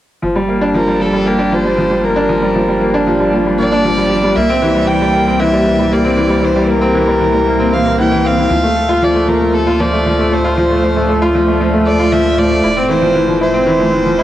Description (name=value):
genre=piano and strings electronica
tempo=116 BPM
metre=4/4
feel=straight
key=G dorian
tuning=A4 = 435 Hz
part: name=granular cloud pad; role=sustained chords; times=2.0-14.2 s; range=A3 to F5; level=-20 LUFS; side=equal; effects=built-in reverb, cassette tape
part: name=bright baby grand piano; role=riff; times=0.2-14.2 s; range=E3 to Bb4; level=-13 LUFS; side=equal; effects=cassette tape
part: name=round analog bass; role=bass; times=0.2-14.2 s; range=F1 to D2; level=-22 LUFS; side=equal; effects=tube saturation
part: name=dark violin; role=melody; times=0.8-14.2 s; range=G4 to G5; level=-17 LUFS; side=right 1 dB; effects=cassette tape
room=moderate lush hall reverb, RT60 3.0 s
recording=home recording on cassette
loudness=-11 LUFS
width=side -13 dB against mid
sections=0.2-14.2 A section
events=none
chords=0.2 Gm7; 4.4 C7; 8.5 Dm; 12.6 Fmaj7